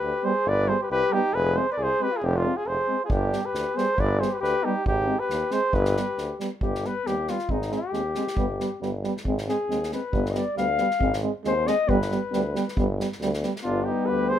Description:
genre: balkan folk, Balkan brass band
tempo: 136 BPM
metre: 2/4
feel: swing 55% on 16ths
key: G phrygian dominant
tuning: A4 = 440 Hz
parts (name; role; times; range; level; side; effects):
- mellow flugelhorn; melody; 0.0-6.4, 13.6-14.4 s; F4 to D5; -25 LUFS; right 1 dB; none
- mellow flugelhorn; second line; 0.0-14.4 s; C4 to F5; -29 LUFS; left 4 dB; none
- clear tuba; bass; 0.0-14.3 s; F1 to Eb2; -28 LUFS; equal; none
- clear euphonium; accompaniment; 0.2-14.4 s; G3 to Ab3; -30 LUFS; right 6 dB; none
- dark French horn; accompaniment; 0.2-14.4 s; B3 to C4; -31 LUFS; left 6 dB; none
- unplugged drum kit; percussion; 3.1-13.6 s; kick drum, snare drum; -31 LUFS; equal; none
room: light reverb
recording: minimal, uncompressed stereo recording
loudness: -23 LUFS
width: side -10 dB against mid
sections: 0.0-6.6 A section; 6.6-13.6 B section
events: flugelhorn solo 6.6-13.6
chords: 0.0 G; 1.3 Fm; 3.1 G; 4.9 Ab; 5.7 G; 7.5 Ab; 8.4 G; 9.3 Ab; 10.1 G; 11.0 Ab; 11.9 G

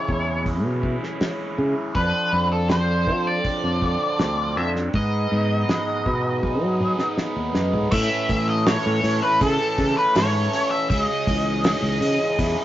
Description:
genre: psychedelic rock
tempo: 80 BPM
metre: 4/4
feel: straight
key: A lydian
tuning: A4 = 440 Hz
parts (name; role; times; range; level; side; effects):
- octave-fuzz lead guitar; melody; 0.0-12.6 s; A4 to E5; -24 LUFS; equal; wah, distortion
- pedal harmonium; sustained chords; 0.0-12.6 s; E3 to E5; -28 LUFS; right 2 dB; none
- fuzz guitar; riff; 0.0-12.6 s; G#2 to A4; -29 LUFS; left 1 dB; distortion, phaser
- fingered electric bass; bass; 0.1-12.5 s; C#2 to F#3; -23 LUFS; equal; none
- cloth-damped thuddy drum kit; drums; 0.1-12.6 s; crash cymbal, hi-hat, kick drum, snare drum, toms; -25 LUFS; equal; none
- maracas; percussion; 7.9-12.6 s; none; -47 LUFS; left 4 dB; none
room: moderate studio reverb, RT60 0.5 s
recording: rough rehearsal-room recording, nothing above 7.5 kHz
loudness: -19 LUFS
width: side -13 dB against mid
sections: 0.0-7.9 A section; 7.9-12.6 B section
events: drum fill 6.4-7.9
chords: 0.0 C#m; 1.9 F6; 4.9 G#m; 7.9 A; 10.9 C#madd9

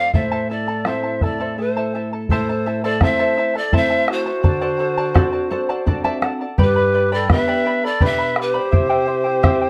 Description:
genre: andean folk, Andean ensemble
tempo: 84 BPM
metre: 3/4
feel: straight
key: A minor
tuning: A4 = 440 Hz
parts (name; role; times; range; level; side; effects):
- breathy bright pan flute; melody; 0.0-9.7 s; B4 to F5; -24 LUFS; equal; none
- mellow large quena; second line; 0.0-9.7 s; F#4 to D5; -26 LUFS; equal; none
- charango; accompaniment; 0.0-9.7 s; E4 to B5; -27 LUFS; equal; none
- nylon-string guitar; accompaniment; 0.0-9.7 s; F2 to F#5; -27 LUFS; equal; none
- bombo; percussion; 0.1-9.7 s; none; -20 LUFS; equal; none
room: moderate studio reverb, RT60 0.6 s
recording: dark, warm production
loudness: -19 LUFS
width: mono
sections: 0.0-2.3 A section; 2.3-9.7 B section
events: nylon-string guitar fill 5.2-6.6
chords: 0.1 Am; 4.4 D7; 6.6 G; 8.7 C

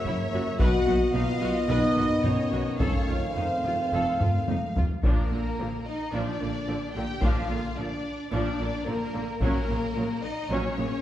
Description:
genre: cinematic, epic orchestral film score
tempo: 110 BPM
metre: 4/4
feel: straight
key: unclear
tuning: A4 = 436 Hz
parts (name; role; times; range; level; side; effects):
- warm studio violin section; melody; 0.0-11.0 s; Bb4 to G5; -36 LUFS; left 3 dB; none
- rich symphonic violin section; second line; 0.0-11.0 s; Bb3 to F5; -36 LUFS; left 2 dB; none
- rich symphonic viola section; accompaniment; 0.0-10.9 s; Db3 to Db5; -35 LUFS; right 1 dB; none
- clear trombone section; sustained chords; 0.0-10.7 s; Db3 to D4; -34 LUFS; right 1 dB; none
- dark trumpet section; stabs; 0.0-4.7 s; Eb5 to F5; -31 LUFS; right 2 dB; none
- rich symphonic cello section; bass; 0.1-10.9 s; F2 to Cb3; -33 LUFS; right 1 dB; none
- warm studio double bass section; bass; 0.1-10.8 s; F1 to Cb2; -34 LUFS; right 1 dB; none
- taiko ensemble; drums; 0.1-9.9 s; none; -27 LUFS; equal; none
- dark French horn section; sustained chords; 0.6-11.0 s; Bb3 to G4; -32 LUFS; left 2 dB; none
room: wet recital hall reverb, RT60 1.3 s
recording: heard from further back in the room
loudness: -24 LUFS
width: side -12 dB against mid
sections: 0.0-5.0 A section; 5.0-11.0 B section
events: drum fill 4.2-5.0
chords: 0.0 Gb7; 0.6 Cb; 2.8 F7; 5.0 Bb; 9.4 Gb/Bb

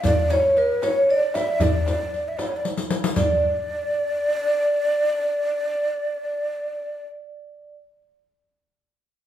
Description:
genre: Persian modal ensemble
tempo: 77 BPM (dotted quarters)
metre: 6/8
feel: straight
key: unclear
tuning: A4 = 440 Hz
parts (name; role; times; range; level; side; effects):
- breathy ney; melody; 0.0-7.0 s; Bb4+50c to E5; -24 LUFS; equal; none
- vibraphone with medium hard mallets; second line; 0.0-7.7 s; Bb4+50c to E5; -25 LUFS; right 1 dB; none
- frame drum; percussion; 0.0-3.4 s; none; -28 LUFS; right 1 dB; none
- riq; percussion; 0.0-3.4 s; none; -28 LUFS; left 4 dB; none
- tombak; percussion; 0.0-3.4 s; none; -27 LUFS; left 1 dB; none
room: wet large studio reverb, RT60 1.2 s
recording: band playing live in one room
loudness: -20 LUFS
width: side -11 dB against mid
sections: 0.0-3.2 A section; 3.2-6.3 B section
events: drum fill 2.6-3.2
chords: none

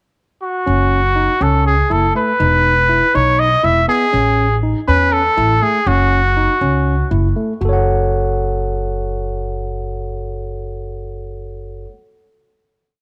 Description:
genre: progressive instrumental, progressive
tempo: 242 BPM (eighths)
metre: 7/8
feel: straight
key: F# dorian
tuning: A4 = 440 Hz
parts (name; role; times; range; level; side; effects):
- warm trumpet; melody; 0.4-7.1 s; F#4 to E5; -17 LUFS; equal; cassette tape
- tine electric piano; arpeggios; 0.7-12.0 s; A3 to F#5; -24 LUFS; equal; none
- upright bass; bass; 0.7-11.8 s; E1 to E2; -21 LUFS; equal; none
room: moderate spring reverb, RT60 1.9 s, small room reverb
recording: home recording on cassette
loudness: -15 LUFS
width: mono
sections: 0.0-0.7 pickup bar; 0.7-7.6 A section; 7.6-11.1 final chord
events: none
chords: 0.0 N.C.; 0.7 F#m; 2.4 E5; 4.1 Amaj7; 5.9 F#5; 7.6 F#m

